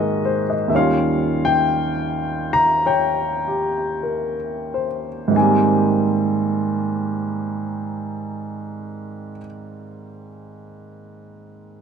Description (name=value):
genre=jazz ballad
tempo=43-62 BPM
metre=4/4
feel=swing 68% on 8ths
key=Ab major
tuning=A4 = 441 Hz
part: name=warm upright piano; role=solo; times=0.0-11.8 s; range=Eb2 to Bb5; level=-19 LUFS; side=equal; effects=none
room=moderate plate reverb, RT60 3.1 s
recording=none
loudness=-18 LUFS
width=side -7 dB against mid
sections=0.7-5.3 A section; 5.3-10.9 B section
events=slowing down 0.0-5.3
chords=0.0 Ab9; 0.7 Eb7; 5.3 Abmaj7